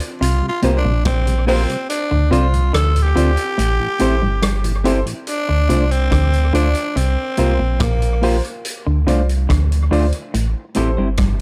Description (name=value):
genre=roots reggae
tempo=71 BPM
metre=4/4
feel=straight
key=D minor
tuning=A4 = 441 Hz
part: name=vintage drum kit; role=drums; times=0.0-11.4 s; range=hi-hat, kick drum, rim click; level=-27 LUFS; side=equal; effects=dub echo
part: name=growling tenor saxophone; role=melody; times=0.2-8.4 s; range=Bb3 to A4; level=-24 LUFS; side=equal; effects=dub echo, plate reverb
part: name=semi-hollow electric guitar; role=riff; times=0.2-11.4 s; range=G2 to D3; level=-26 LUFS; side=equal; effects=spring reverb
part: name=warm sub bass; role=bass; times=0.2-11.4 s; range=G1 to D2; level=-19 LUFS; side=equal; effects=none
part: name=mellow tonewheel organ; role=accompaniment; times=0.4-5.1 s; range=D2 to G4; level=-28 LUFS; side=equal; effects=none
part: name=semi-hollow electric guitar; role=accompaniment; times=0.6-11.1 s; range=A3 to C5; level=-26 LUFS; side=equal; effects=dub echo, plate reverb
part: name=dark grand piano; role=stabs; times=0.6-10.9 s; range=F4 to D5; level=-26 LUFS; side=equal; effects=plate reverb
room=light reverb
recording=none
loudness=-17 LUFS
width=mono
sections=0.0-5.3 A section; 5.3-11.4 B section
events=tenor saxophone solo 0.0-5.3; kick muted 1.9-5.3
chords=0.2 C7sus4; 1.9 Dm7; 3.6 Am7; 5.3 Dm7; 7.0 C7sus4; 8.6 Dm7; 10.3 Am7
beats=0.21 1.05 | 1.90 2.74 3.58 4.43 | 5.27 6.12 6.96 7.80 | 8.65 9.49 10.34 11.18